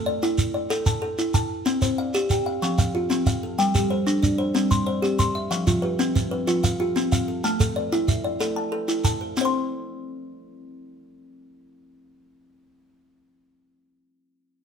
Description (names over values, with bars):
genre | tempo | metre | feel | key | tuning
southern african traditional, mbira-style interlocking cycle | 125 BPM (dotted quarters) | 12/8 | straight | unclear | A4 = 442 Hz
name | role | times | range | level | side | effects
kalimba | arpeggios | 0.0-13.9 s | F3 to C6 | -24 LUFS | left 2 dB | none
shekere | percussion | 0.2-9.5 s | none | -25 LUFS | right 2 dB | none
kalimba | arpeggios | 1.8-13.9 s | F3 to C6 | -29 LUFS | right 2 dB | none
room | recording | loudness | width
wet stone room reverb, RT60 1.1 s | band playing live in one room | -21 LUFS | side -7 dB against mid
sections
0.0-9.4 A section; 9.4-13.2 B section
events
none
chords
0.0 A5; 1.7 C5; 2.6 F; 3.6 G5; 4.6 C; 5.5 F5; 7.4 A5; 9.4 N.C.